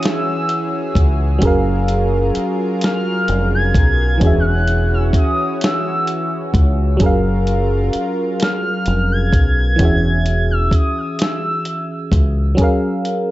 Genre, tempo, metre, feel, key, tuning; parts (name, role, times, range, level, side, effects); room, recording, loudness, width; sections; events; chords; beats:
slow six-eight R&B; 43 BPM (dotted quarters); 6/8; straight; F# major; A4 = 442 Hz
gliding portamento lead; melody; 0.0-12.2 s; D#6 to G#6; -22 LUFS; equal; chorus, tape echo
FM electric piano; accompaniment; 0.0-13.3 s; E3 to E#5; -20 LUFS; right 1 dB; chorus
lush unison pad; sustained chords; 0.0-9.8 s; E3 to A#4; -25 LUFS; equal; chorus
dusty soul sampler-style drum kit; drums; 0.0-13.3 s; hi-hat, kick drum, snare drum; -17 LUFS; equal
deep dub fingered electric bass; bass; 1.0-12.5 s; E1 to C#2; -17 LUFS; equal
light reverb; echo-heavy mix, nothing above 7.8 kHz; -14 LUFS; side -16 dB against mid
0.0-13.3 A section
0.0 E69; 1.4 F#maj9; 4.2 E69; 7.0 F#maj9; 9.8 E69; 12.6 F#maj9
0.03 | 1.42 2.82 | 4.21 5.61 | 7.00 8.40 | 9.79 11.19 | 12.58